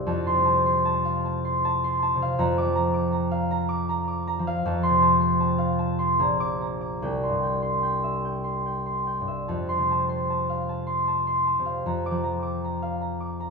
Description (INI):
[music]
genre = classical, solo harp piece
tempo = 71-81 BPM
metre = 3/4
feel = rubato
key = F major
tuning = A4 = 439 Hz
[part]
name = concert harp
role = solo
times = 0.0-13.5 s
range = Bb1 to D6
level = -22 LUFS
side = equal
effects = none
[sound]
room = wet recital hall reverb, RT60 1.4 s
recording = minimal, uncompressed stereo recording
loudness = -22 LUFS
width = side -4 dB against mid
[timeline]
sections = 0.1-13.5 A section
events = none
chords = 0.1 F; 2.4 Bb/F; 4.6 F; 6.2 Bb; 7.0 C; 9.5 F; 11.8 Bb/F